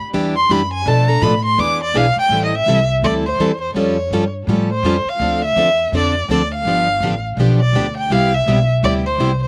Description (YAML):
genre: acoustic string swing (jazz manouche)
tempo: 166 BPM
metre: 4/4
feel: swing 60% on 8ths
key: A minor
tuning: A4 = 440 Hz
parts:
  - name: picked plugged-in steel-string acoustic guitar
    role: accompaniment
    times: 0.1-9.3 s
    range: B2 to A4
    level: -22 LUFS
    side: equal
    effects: none
  - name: picked steel-string acoustic guitar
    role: accompaniment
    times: 0.1-9.3 s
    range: B2 to B4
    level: -26 LUFS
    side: equal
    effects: none
  - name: upright bass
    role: bass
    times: 0.1-9.5 s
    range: G1 to B2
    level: -22 LUFS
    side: equal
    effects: none
  - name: warm violin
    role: melody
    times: 0.4-9.5 s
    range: C5 to D6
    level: -20 LUFS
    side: equal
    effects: none
room: little or no reverb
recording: recorded outdoors, with no room sound, vinyl crackle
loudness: -16 LUFS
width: mono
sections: 0.0-2.3 A section; 2.3-9.5 B section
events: violin solo 0.0-2.3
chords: 0.0 Em9; 0.9 Bm7b5; 1.6 E7; 2.3 Am7; 3.8 A7alt; 5.2 Dm7; 6.7 G7; 8.1 Cmaj9